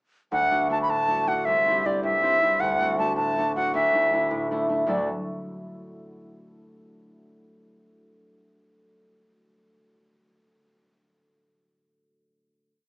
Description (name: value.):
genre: celtic folk, Celtic jig.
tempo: 105 BPM (dotted quarters).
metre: 6/8.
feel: straight.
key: D mixolydian.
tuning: A4 = 440 Hz.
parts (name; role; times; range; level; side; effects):
bright reedy wooden flute; melody; 0.3-5.1 s; D5 to B5; -22 LUFS; equal; none.
concert harp; accompaniment; 0.3-6.0 s; C2 to A4; -27 LUFS; equal; none.
room: moderate studio reverb, RT60 0.7 s.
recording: small speaker sound.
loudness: -21 LUFS.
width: side -32 dB against mid.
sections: 0.3-4.9 A section; 4.9-6.0 final chord.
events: none.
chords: 0.3 D; 1.5 C; 2.6 D; 3.7 Dsus2; 4.9 D.